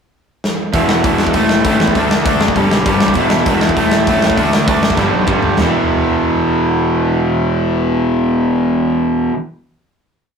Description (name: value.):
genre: punk rock.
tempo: 199 BPM.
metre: 4/4.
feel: straight.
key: unclear.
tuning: A4 = 439 Hz.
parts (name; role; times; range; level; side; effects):
big rock drum kit; drums; 0.4-5.7 s; hi-hat, kick drum, snare drum, toms; -17 LUFS; equal; none.
distorted electric guitar; riff; 0.7-9.4 s; E2 to D4; -16 LUFS; left 3 dB; distortion.
overdriven electric guitar; riff; 0.7-9.4 s; E2 to D4; -17 LUFS; right 4 dB; none.
fuzz picked electric bass; bass; 0.7-9.3 s; E1 to E2; -20 LUFS; equal; overdrive.
room: moderate small room reverb, RT60 0.5 s.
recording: rough rehearsal-room recording.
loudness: -12 LUFS.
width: side -6 dB against mid.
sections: 0.0-0.7 pickup bar; 0.7-5.6 verse; 5.6-8.0 final chord.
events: drum fill 0.4-0.7, 5.0-5.6.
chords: 0.0 N.C.; 0.7 E5; 1.3 A5/E; 2.0 D; 2.6 G; 3.2 E5; 3.8 A5/E; 4.4 D; 5.0 G; 5.6 E5.